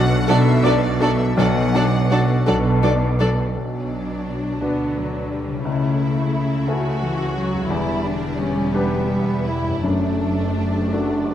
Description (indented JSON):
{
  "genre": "cinematic",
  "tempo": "54-59 BPM (dotted quarters)",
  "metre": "6/8",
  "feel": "rubato",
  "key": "unclear",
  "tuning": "A4 = 441 Hz",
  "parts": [
    { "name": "warm studio violin section", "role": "melody", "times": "0.0-11.3 s", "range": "B4 to F#5", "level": "-34 LUFS", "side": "left 1 dB", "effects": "none" },
    { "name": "clear baby grand piano", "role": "accompaniment", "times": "0.0-11.3 s", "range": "B1 to D5", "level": "-24 LUFS", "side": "left 1 dB", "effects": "none" },
    { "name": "concert harp", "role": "arpeggios", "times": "0.0-11.3 s", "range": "E2 to A5", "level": "-26 LUFS", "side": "left 4 dB", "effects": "none" },
    { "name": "rich studio cello section", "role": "bass", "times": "0.0-11.3 s", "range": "E2 to D3", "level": "-26 LUFS", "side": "right 2 dB", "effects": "none" },
    { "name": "rich studio double bass section", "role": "bass", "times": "0.0-11.3 s", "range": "E1 to D2", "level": "-24 LUFS", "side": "right 2 dB", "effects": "none" },
    { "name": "warm studio violin section", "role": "second line", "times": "0.3-11.3 s", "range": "B3 to D5", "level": "-26 LUFS", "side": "equal", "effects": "none" },
    { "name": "rich studio viola section", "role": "accompaniment", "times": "0.3-11.3 s", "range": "E3 to D4", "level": "-26 LUFS", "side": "right 1 dB", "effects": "none" }
  ],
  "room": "wet scoring stage reverb, RT60 1.6 s",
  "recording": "none",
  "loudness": "-18 LUFS",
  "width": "side -10 dB against mid",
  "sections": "0.0-3.6 A section; 3.6-11.3 B section",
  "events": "none",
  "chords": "0.0 D6/B; 3.6 Bm; 5.7 A/C#; 7.7 Em7; 9.8 D/F#"
}